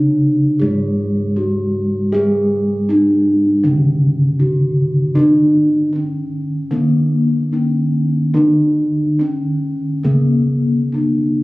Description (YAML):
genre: Javanese gamelan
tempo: 66-79 BPM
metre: 4/4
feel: straight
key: C# pelog barang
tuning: A4 = 439 Hz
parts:
  - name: gamelan-type bronze metallophone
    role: melody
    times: 0.0-11.4 s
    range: A#3+20c to G#4-40c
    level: -17 LUFS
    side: equal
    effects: slapback echo
  - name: gamelan-type bronze metallophone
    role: accompaniment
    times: 0.0-11.4 s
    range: C#3 to A#3+20c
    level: -19 LUFS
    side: equal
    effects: none
  - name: gamelan-type bossed gongs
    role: bass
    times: 0.0-11.4 s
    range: G#2-40c to G#4-40c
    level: -19 LUFS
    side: equal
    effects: none
room: moderate recital hall reverb, RT60 1.5 s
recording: recorded on a phone in the room, club reverb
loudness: -13 LUFS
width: side -20 dB against mid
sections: 0.0-11.4 A section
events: none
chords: none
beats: 0.61 1.37 | 2.13 2.89 3.65 4.41 | 5.17 5.93 6.72 7.53 | 8.35 9.20 10.06 10.95